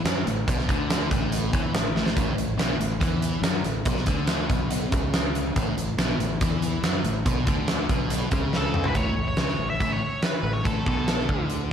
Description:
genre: classic rock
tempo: 141 BPM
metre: 4/4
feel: straight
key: A major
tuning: A4 = 438 Hz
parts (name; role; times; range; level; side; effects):
- sludgy distorted guitar; riff; 0.0-11.7 s; A2 to F#3; -28 LUFS; equal; overdrive, slapback echo
- growling fingered electric bass; bass; 0.0-11.7 s; A1 to F#2; -30 LUFS; equal; overdrive
- huge arena drum kit; drums; 0.1-11.6 s; hi-hat, kick drum, snare drum, toms; -25 LUFS; equal; none
- nasal lead guitar with a parked wah; melody; 8.6-11.5 s; A4 to E5; -29 LUFS; equal; overdrive, slapback echo
room: moderate concert hall reverb, RT60 1.8 s, small room ambience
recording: big arena sound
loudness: -22 LUFS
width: side -8 dB against mid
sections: 0.0-8.9 A section; 8.9-11.7 B section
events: drum fill 2.0, 8.5-8.9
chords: 0.0 A

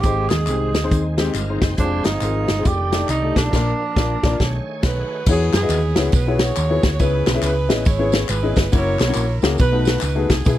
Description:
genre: uptempo gospel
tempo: 138 BPM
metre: 4/4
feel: swing 62% on 8ths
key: E major from 5.3 s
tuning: A4 = 441 Hz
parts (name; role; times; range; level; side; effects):
- breathy tenor saxophone; melody; 0.0-4.8 s; D4 to Ab4; -24 LUFS; right 4 dB; none
- warm grand piano; accompaniment; 0.0-10.6 s; Ab2 to E5; -23 LUFS; left 5 dB; none
- bright tonewheel organ; sustained chords; 0.0-5.3 s; Eb3 to Ab5; -31 LUFS; right 3 dB; fast rotary speaker, overdrive, chorus vibrato
- mellow French horn section; sustained chords; 0.0-5.3 s; D#3 to F5; -34 LUFS; right 1 dB; none
- hollow-body short-scale fingered electric bass; bass; 0.0-10.6 s; F1 to F#2; -22 LUFS; equal; none
- natural country drum kit; drums; 0.0-10.6 s; crash cymbal, hi-hat, kick drum, ride cymbal, snare drum; -19 LUFS; equal; none
- tambourine and handclaps; percussion; 0.0-10.6 s; none; -32 LUFS; left 5 dB; none
- clear saxophone section; melody; 4.9-10.6 s; B3 to C#5; -24 LUFS; right 4 dB; none
room: little or no reverb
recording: dry, close 1970s-style studio recording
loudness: -16 LUFS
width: side -13 dB against mid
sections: 0.0-5.3 A section; 5.3-10.6 B section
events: tonewheel organ fill 0.9-1.8; band accent 3.5-5.3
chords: 0.0 Ab; 1.8 Fm; 2.7 F13; 3.5 Bb; 4.4 B13; 5.3 E69; 7.0 C#m7; 8.7 F#7; 9.6 B7

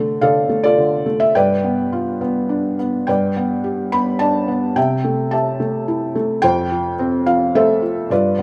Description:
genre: classical, lyrical solo piano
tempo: 107 BPM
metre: 3/4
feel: rubato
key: unclear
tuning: A4 = 440 Hz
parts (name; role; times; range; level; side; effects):
- felt-muted upright piano; solo; 0.0-8.4 s; F2 to B5; -18 LUFS; equal; none
room: moderate recital hall reverb, RT60 1.7 s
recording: none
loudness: -18 LUFS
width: mono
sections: 0.0-8.4 A section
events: none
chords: 0.0 Dm; 1.4 G7; 3.1 G; 4.8 C6; 6.4 F

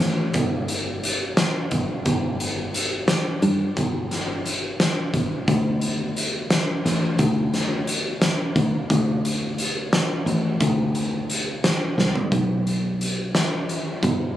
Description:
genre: progressive instrumental, band music in an uneven meter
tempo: 175 BPM (eighths)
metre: 5/8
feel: straight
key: unclear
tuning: A4 = 440 Hz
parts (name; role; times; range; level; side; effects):
- fingered electric bass; bass; 0.0-14.4 s; G1 to G2; -23 LUFS; equal; none
- oversized low-tuned drum kit; drums; 0.0-14.2 s; hi-hat, kick drum, snare drum, toms; -23 LUFS; equal; none
room: light reverb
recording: recorded on a phone in the room, club reverb, compression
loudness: -20 LUFS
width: side -12 dB against mid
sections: 0.0-12.3 A section; 12.3-14.4 B section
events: drum fill 12.0-12.3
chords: none

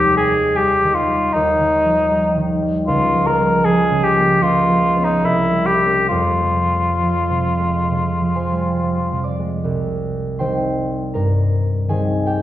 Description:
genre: classical, romantic duo for cor anglais and harp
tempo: 61-81 BPM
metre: 4/4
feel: rubato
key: F minor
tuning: A4 = 440 Hz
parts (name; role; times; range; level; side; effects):
- mellow cor anglais; melody; 0.0-9.2 s; Eb4 to Bb4; -17 LUFS; left 1 dB; none
- concert harp; accompaniment; 0.0-12.4 s; C2 to D6; -18 LUFS; equal; none
room: wet recital hall reverb, RT60 1.4 s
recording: heard from further back in the room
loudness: -15 LUFS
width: side -13 dB against mid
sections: 0.0-9.7 A section; 9.7-12.4 B section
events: none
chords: 0.0 Ebadd9; 2.9 Bbm/Db; 4.4 Db7; 5.2 C7b9; 6.1 Fm; 9.7 Cm

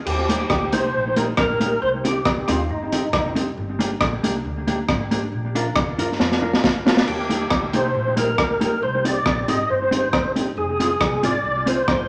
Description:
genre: ska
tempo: 137 BPM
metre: 4/4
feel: straight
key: unclear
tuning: A4 = 440 Hz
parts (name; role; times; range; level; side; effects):
- percussive tonewheel organ; melody; 0.1-3.3, 7.1-12.1 s; Eb4 to Eb5; -25 LUFS; equal; overdrive, chorus vibrato, slow rotary speaker
- upright bass; bass; 0.1-12.1 s; F1 to G2; -32 LUFS; equal; none
- crunchy breakbeat drum kit; drums; 0.1-12.0 s; crash cymbal, hi-hat, kick drum, rim click, snare drum; -24 LUFS; equal; none
- mellow electric guitar; accompaniment; 0.3-11.8 s; Bb3 to Bb4; -27 LUFS; equal; tape echo
room: wet large studio reverb, RT60 1.1 s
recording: none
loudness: -21 LUFS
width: mono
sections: 0.1-12.1 A section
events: drum fill 6.2-7.1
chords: 0.1 Eb; 1.8 Cm; 3.6 Gm; 5.3 Bb; 7.1 Eb; 8.8 Cm; 10.6 Fm

